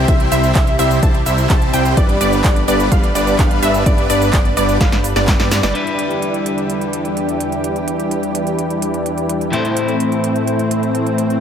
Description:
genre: EDM, festival progressive house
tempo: 127 BPM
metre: 4/4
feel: straight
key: unclear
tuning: A4 = 440 Hz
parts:
  - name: lush unison pad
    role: sustained chords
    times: 0.0-11.4 s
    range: E2 to B4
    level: -23 LUFS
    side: equal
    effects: chorus, sidechain pumping
  - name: wide unison pluck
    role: arpeggios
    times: 0.0-5.7 s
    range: D5 to A5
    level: -22 LUFS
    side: equal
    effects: sidechain pumping, digital delay
  - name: big supersaw lead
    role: riff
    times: 0.0-11.4 s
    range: G3 to A5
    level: -19 LUFS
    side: equal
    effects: sidechain pumping, low-pass filter, digital delay
  - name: fat analog bass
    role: bass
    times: 0.0-5.7 s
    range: G1 to G2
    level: -20 LUFS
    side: equal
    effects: sidechain pumping
  - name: big-room dance drum kit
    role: drums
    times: 0.1-11.4 s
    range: handclaps, hi-hat, shaker, snare drum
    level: -24 LUFS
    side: right 2 dB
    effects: none
  - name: electronic kick drum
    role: drums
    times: 0.1-5.4 s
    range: none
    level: -15 LUFS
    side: equal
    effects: none
  - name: electric guitar at the edge of break-up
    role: accompaniment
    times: 5.7-11.4 s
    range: A2 to C5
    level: -22 LUFS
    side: left 2 dB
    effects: sidechain pumping, digital delay
room: light reverb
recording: none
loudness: -14 LUFS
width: side -8 dB against mid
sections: 0.0-5.8 A section; 5.8-11.4 B section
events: drop 0.0-5.8; drum fill 4.8-5.8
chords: 0.0 C; 2.0 G; 5.8 Em7; 9.5 Am

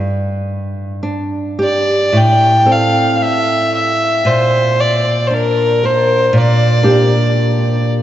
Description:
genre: celtic folk, Celtic slow air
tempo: 52-60 BPM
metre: 4/4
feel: rubato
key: G dorian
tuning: A4 = 442 Hz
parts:
  - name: flamenco guitar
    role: accompaniment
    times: 0.0-8.0 s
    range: G2 to Bb4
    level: -14 LUFS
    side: equal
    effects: none
  - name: rich fiddle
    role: melody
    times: 1.6-7.9 s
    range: Bb4 to G5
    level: -13 LUFS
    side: equal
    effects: none
room: wet cathedral reverb, RT60 5.3 s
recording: in a vast, echoing space, nothing above 7.7 kHz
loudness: -11 LUFS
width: side -12 dB against mid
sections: 0.0-8.0 A section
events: none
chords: 0.0 G5; 2.1 Am; 4.2 Bb; 6.3 Gm/Bb

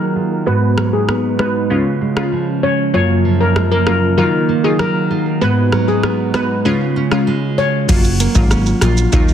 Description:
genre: dancehall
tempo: 97 BPM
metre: 4/4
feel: straight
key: F# major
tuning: A4 = 442 Hz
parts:
  - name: steel pan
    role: melody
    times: 0.0-7.7 s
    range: G#4 to C#5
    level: -20 LUFS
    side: left 3 dB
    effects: low-pass filter, digital delay
  - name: hollow soft pad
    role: sustained chords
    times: 0.0-7.9 s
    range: C#3 to B4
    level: -22 LUFS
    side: right 1 dB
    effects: ensemble chorus, sidechain pumping, low-pass filter
  - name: nylon-string guitar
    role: arpeggios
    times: 0.0-9.3 s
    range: F#2 to E#4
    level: -18 LUFS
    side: right 3 dB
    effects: low-pass filter
  - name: glassy wavetable pluck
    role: accompaniment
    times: 0.5-9.3 s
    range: F#3 to F#4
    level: -19 LUFS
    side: left 2 dB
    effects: chorus, low-pass filter
  - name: booming analog drum machine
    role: drums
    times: 0.8-9.3 s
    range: crash cymbal, hi-hat, kick drum, rim click, shaker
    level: -18 LUFS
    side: equal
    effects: none
  - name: plucky analog bass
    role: bass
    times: 7.9-9.3 s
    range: F#1 to D#2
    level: -15 LUFS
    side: equal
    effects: none
room: light reverb, digital ambience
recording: dense, heavily limited modern master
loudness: -13 LUFS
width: side -9 dB against mid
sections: 0.0-7.9 A section; 7.9-9.3 B section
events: filter sweep 0.0-7.9; drums muted 7.3-7.9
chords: 0.5 G#m7; 1.7 C#; 2.9 F#maj7; 4.2 D#madd9; 5.4 G#m7; 6.7 C#; 7.9 F#maj7

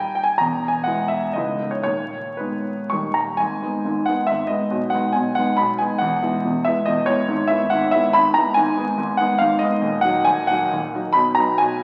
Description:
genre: classical, romantic triple-time dance for piano with dotted rhythms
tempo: 106-153 BPM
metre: 3/4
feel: rubato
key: G# minor, Eb minor from 8.6 s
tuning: A4 = 438 Hz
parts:
  - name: clear concert grand piano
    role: solo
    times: 0.0-11.8 s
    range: C#1 to C#6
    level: -20 LUFS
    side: equal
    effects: none
room: wet recital hall reverb, RT60 1.5 s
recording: very old 78 rpm record, vinyl crackle, nothing above 10.4 kHz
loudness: -20 LUFS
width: mono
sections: 0.0-3.4 A section; 3.4-11.8 B section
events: none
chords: 0.4 E; 1.4 C#m7; 1.9 G#m/D#; 2.9 D#; 3.4 G#m; 4.7 G#m/B; 6.0 E; 7.3 E/G#; 8.6 Abm; 9.8 Ebm; 11.2 B

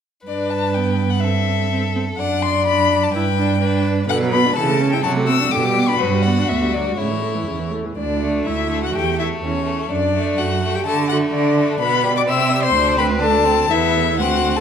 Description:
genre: quick classical-period movement for string quartet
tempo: 125 BPM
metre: 2/4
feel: straight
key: G major, D major from 4.1 s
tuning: A4 = 440 Hz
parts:
  - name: rich violin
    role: melody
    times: 0.3-14.6 s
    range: B4 to E6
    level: -21 LUFS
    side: left 9 dB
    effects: none
  - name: clear violin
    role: second line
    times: 0.3-14.6 s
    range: G3 to D5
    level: -24 LUFS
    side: left 3 dB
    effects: none
  - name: rich viola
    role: accompaniment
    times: 0.3-14.6 s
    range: C#3 to E5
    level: -22 LUFS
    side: right 2 dB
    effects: none
  - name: rich cello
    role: bass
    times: 0.3-14.6 s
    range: D2 to D3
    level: -21 LUFS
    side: right 5 dB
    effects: none
room: wet recital hall reverb, RT60 1.7 s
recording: none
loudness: -16 LUFS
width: side -8 dB against mid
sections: 0.3-8.0 A section; 8.0-14.6 B section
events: none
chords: 0.3 G; 1.2 Am7/G; 2.2 D/F#; 3.1 G; 4.1 Bm; 4.6 A/C#; 5.0 D7/C; 5.5 G/B; 6.0 Gmaj7; 7.0 A; 8.0 D5; 8.9 A/E; 9.9 D/F#; 10.9 D5; 11.8 G/B; 12.3 C; 12.8 D5; 13.7 E5

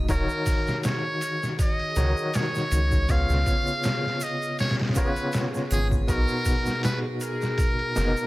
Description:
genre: trip hop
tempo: 80 BPM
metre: 4/4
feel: swing 55% on 16ths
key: Eb minor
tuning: A4 = 439 Hz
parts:
  - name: overdriven tine electric piano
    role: accompaniment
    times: 0.0-8.3 s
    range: B2 to Db5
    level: -29 LUFS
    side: equal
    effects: fast tremolo
  - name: round analog bass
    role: bass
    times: 0.0-8.1 s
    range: Eb1 to Db2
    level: -24 LUFS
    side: equal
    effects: none
  - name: trumpet with metal mute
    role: melody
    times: 0.1-8.3 s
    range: Ab4 to F5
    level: -29 LUFS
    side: equal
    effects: tape echo
  - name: trip hop sampler-style drum kit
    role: drums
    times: 0.1-8.2 s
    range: hi-hat, kick drum, snare drum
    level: -26 LUFS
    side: equal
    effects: vintage 12-bit sampler grit, small room ambience
  - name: tube shaker and triangle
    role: percussion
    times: 0.1-8.3 s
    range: none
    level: -41 LUFS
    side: right 3 dB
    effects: none
  - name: backwards swelling texture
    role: texture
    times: 1.1-8.3 s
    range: Ab4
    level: -40 LUFS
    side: equal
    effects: none
room: little or no reverb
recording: none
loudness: -22 LUFS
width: side -18 dB against mid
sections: 0.0-8.3 A section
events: none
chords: 0.1 Ebm7; 3.1 Db7; 6.1 Bmaj7

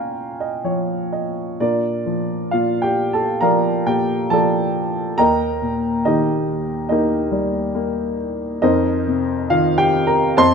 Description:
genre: classical, lyrical solo piano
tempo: 62-71 BPM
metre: 4/4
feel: rubato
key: Bb major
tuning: A4 = 441 Hz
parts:
  - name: dark grand piano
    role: solo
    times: 0.0-10.5 s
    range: Eb2 to C6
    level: -17 LUFS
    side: equal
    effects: none
room: light reverb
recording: close, detailed microphones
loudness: -17 LUFS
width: side -6 dB against mid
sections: 0.0-1.6 A section; 1.6-10.5 B section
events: grand piano fill 0.0-1.6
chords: 0.0 Bbm; 1.6 Bb; 5.2 Eb; 8.6 F7sus4

